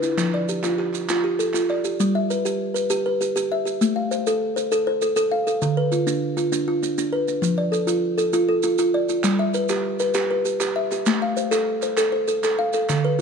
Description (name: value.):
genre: southern african traditional, mbira-style interlocking cycle.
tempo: 132 BPM (dotted quarters).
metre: 12/8.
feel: straight.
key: G mixolydian.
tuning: A4 = 441 Hz.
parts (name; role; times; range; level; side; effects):
kalimba; arpeggios; 0.0-13.2 s; D3 to F5; -20 LUFS; equal; none.
group handclap; percussion; 0.0-1.8, 9.2-13.0 s; none; -31 LUFS; right 6 dB; none.
maracas; percussion; 0.0-13.0 s; none; -33 LUFS; right 12 dB; none.
room: light reverb.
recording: dark, warm production.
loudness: -20 LUFS.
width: side -6 dB against mid.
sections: 0.0-2.0 A section; 2.0-13.2 B section.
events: none.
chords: 0.2 F; 2.0 G; 3.8 Am; 5.6 Dm; 7.4 F; 9.2 G; 11.1 Am.